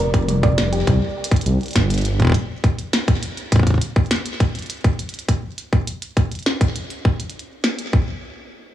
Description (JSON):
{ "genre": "IDM", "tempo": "102 BPM", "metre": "4/4", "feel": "straight", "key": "unclear", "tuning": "A4 = 441 Hz", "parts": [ { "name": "thumb-piano-like synth pluck", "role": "arpeggios", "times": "0.0-0.9 s", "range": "G3 to D5", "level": "-26 LUFS", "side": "right 2 dB", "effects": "chorus, dub echo" }, { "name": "dark detuned saw bass", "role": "bass", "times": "0.0-2.3 s", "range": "F1 to C2", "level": "-18 LUFS", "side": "equal", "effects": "none" }, { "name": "electronic kick drum", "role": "drums", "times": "0.1-8.1 s", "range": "none", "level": "-16 LUFS", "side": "equal", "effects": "none" }, { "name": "glitchy drum kit", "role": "drums", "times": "0.1-7.9 s", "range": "hi-hat, snare drum", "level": "-25 LUFS", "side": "equal", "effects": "soft clipping on snare, digital delay" } ], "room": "light reverb", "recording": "blown-out, overdriven recording, overdrive, small room reverb", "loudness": "-17 LUFS", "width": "side -12 dB against mid", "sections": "0.0-7.9 A section", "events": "none", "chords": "0.0 N.C.; 0.9 C5; 3.2 N.C.", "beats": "0.28 | 0.87 1.46 2.05 2.64 | 3.23 3.81 4.40 4.99 | 5.58 6.17 6.76 7.34 | 7.93" }